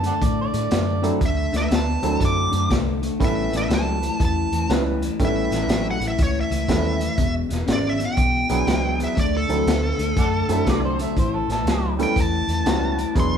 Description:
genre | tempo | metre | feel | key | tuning
electric blues shuffle | 121 BPM | 4/4 | swing 65% on 8ths | A mixolydian | A4 = 440 Hz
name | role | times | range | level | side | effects
overdriven harmonica | second line | 0.0-1.1, 10.2-11.9 s | A4 to A5 | -27 LUFS | right 3 dB | none
electric guitar through a small old amp | riff | 0.0-13.4 s | E2 to B3 | -26 LUFS | left 4 dB | none
vintage muted fingered electric bass | bass | 0.0-13.4 s | E1 to A2 | -25 LUFS | right 1 dB | none
crunchy breakbeat drum kit | drums | 0.0-13.3 s | hi-hat, kick drum, snare drum | -24 LUFS | equal | none
clear upright piano | accompaniment | 1.0-13.4 s | F#3 to B4 | -26 LUFS | right 3 dB | none
smooth overdriven lead guitar | melody | 1.3-13.3 s | A4 to D6 | -26 LUFS | right 1 dB | none
room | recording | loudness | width
moderate large studio reverb, RT60 1.3 s | band playing live in one room | -19 LUFS | side -8 dB against mid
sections
0.0-13.4 A section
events
none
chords
0.0 D7; 3.2 A7; 7.2 E7; 9.2 D7; 11.2 A7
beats
0.21 0.71 | 1.21 1.71 2.20 2.70 | 3.20 3.70 4.20 4.69 | 5.19 5.69 6.18 6.68 | 7.18 7.68 8.18 8.67 | 9.17 9.67 10.16 10.66 | 11.16 11.65 12.15 12.65 | 13.15

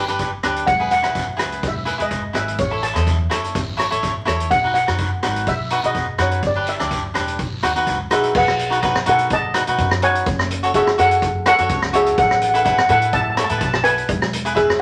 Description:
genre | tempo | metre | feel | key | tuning
calypso | 125 BPM | 4/4 | swing 54% on 16ths | unclear | A4 = 440 Hz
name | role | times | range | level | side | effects
cavaquinho | accompaniment | 0.0-14.8 s | D4 to D#5 | -24 LUFS | equal | none
upright bass | bass | 0.0-14.7 s | E1 to B2 | -28 LUFS | equal | none
street-band drum kit | drums | 0.1-14.8 s | crash cymbal, hi-hat, kick drum, rim click | -26 LUFS | equal | none
guiro | percussion | 0.2-8.0 s | none | -36 LUFS | equal | none
steel pan | melody | 0.7-14.8 s | G#4 to A5 | -21 LUFS | equal | none
room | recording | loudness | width
moderate studio reverb, RT60 0.7 s | vinyl crackle | -19 LUFS | mono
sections
0.0-8.4 A section; 8.4-14.8 B section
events
none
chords
0.0 G; 0.7 Eadd9; 2.6 A; 4.5 B; 6.4 G6; 7.4 B; 10.3 F#madd9; 12.2 Asus2; 14.1 E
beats
0.19 | 0.67 1.15 1.63 2.11 | 2.59 3.08 3.56 4.04 | 4.51 5.00 5.47 5.96 | 6.43 6.92 7.39 7.87 | 8.35 8.83 9.31 9.79 | 10.27 10.75 11.22 11.70 | 12.18 12.66 13.14 13.62 | 14.09 14.57

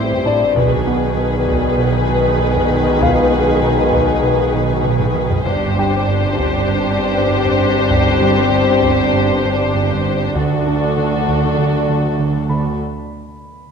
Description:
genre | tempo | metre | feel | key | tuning
cinematic, suspense film score | 98 BPM | 4/4 | straight | unclear | A4 = 440 Hz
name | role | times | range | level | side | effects
warm studio violin section | melody | 0.0-12.8 s | A4 to C5 | -21 LUFS | left 5 dB | none
dark symphonic violin section | second line | 0.0-12.8 s | F#4 to G#4 | -22 LUFS | left 2 dB | none
warm studio viola section | accompaniment | 0.0-12.8 s | D#3 to E4 | -22 LUFS | right 2 dB | none
mellow French horn section | sustained chords | 0.0-12.8 s | D#3 to D4 | -22 LUFS | left 4 dB | none
rubbery square bass | riff | 0.0-12.7 s | G2 to D4 | -22 LUFS | right 3 dB | none
rich studio double bass section | bass | 0.0-12.8 s | G1 to D2 | -22 LUFS | right 3 dB | none
warm studio cello section | bass | 0.0-12.8 s | D2 to B2 | -22 LUFS | right 4 dB | none
warm grand piano | texture | 0.0-13.7 s | D4 to B5 | -25 LUFS | left 5 dB | none
taiko ensemble | drums | 0.1-11.8 s | none | -25 LUFS | equal | none
room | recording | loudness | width
moderate concert hall reverb, RT60 2.0 s | none | -13 LUFS | side -6 dB against mid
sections
0.0-13.7 A section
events
drum fill 4.8-5.5; break 12.8-13.7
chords
0.0 Am7; 0.6 B6; 5.5 Gsus4; 10.4 D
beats
| 0.56 1.17 1.78 2.40 | 3.01 3.62 4.23 4.84 | 5.46 6.07 6.68 7.29 | 7.91 8.52 9.13 9.74 | 10.36 10.97 11.58 12.19 | 12.80 13.42

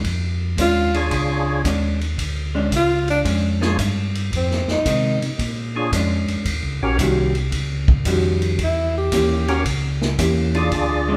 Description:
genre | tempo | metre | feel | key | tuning
soul jazz organ trio | 112 BPM | 4/4 | swing 68% on 8ths | unclear | A4 = 440 Hz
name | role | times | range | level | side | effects
vintage hollow-body jazz guitar | accompaniment | 0.0-11.2 s | Eb3 to G4 | -26 LUFS | equal | none
mellow tonewheel organ | bass | 0.0-11.2 s | Bb1 to C3 | -25 LUFS | equal | slow rotary speaker
vintage drum kit | drums | 0.0-10.9 s | hi-hat, kick drum, ride cymbal, snare drum | -27 LUFS | equal | none
breathy tenor saxophone | melody | 0.6-5.4, 8.6-9.6 s | C4 to G4 | -24 LUFS | equal | none
percussive tonewheel organ | melody | 0.9-11.2 s | Db4 to D5 | -25 LUFS | equal | slow rotary speaker, overdrive, chorus vibrato
room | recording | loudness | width
moderate large studio reverb, RT60 1.2 s | band playing live in one room | -20 LUFS | mono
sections
0.0-11.2 A section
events
tenor saxophone solo 0.0-11.2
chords
0.0 Dbadd9; 4.3 Fm7; 5.4 Bb7#9; 6.5 Eb7#9; 8.6 Edim7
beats
| 0.05 0.58 1.12 1.65 | 2.19 2.72 3.26 3.79 | 4.33 4.86 5.39 5.93 | 6.46 6.99 7.53 8.06 | 8.59 9.12 9.66 10.19 | 10.72

